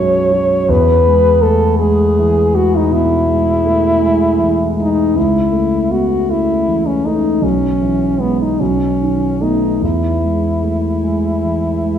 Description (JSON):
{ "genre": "classical, romantic duo for French horn and grand piano", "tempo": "48-55 BPM (dotted quarters)", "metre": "12/8", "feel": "rubato", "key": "E major", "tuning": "A4 = 441 Hz", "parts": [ { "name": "clear French horn", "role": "melody", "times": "0.0-12.0 s", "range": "B3 to C#5", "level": "-15 LUFS", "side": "left 1 dB", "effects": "none" }, { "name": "dark concert grand piano", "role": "accompaniment", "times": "0.0-12.0 s", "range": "B1 to B3", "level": "-15 LUFS", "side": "equal", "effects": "none" } ], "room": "wet recital hall reverb, RT60 1.4 s", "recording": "heard from further back in the room", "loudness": "-12 LUFS", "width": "side -9 dB against mid", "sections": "0.0-12.0 A section", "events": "none", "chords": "0.0 B5; 0.7 E; 5.2 A/C#; 7.4 E/B; 8.6 B7; 9.8 E", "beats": "| 0.69 1.81 2.92 4.03 | 5.17 6.30 7.43 8.60 | 9.83 11.06" }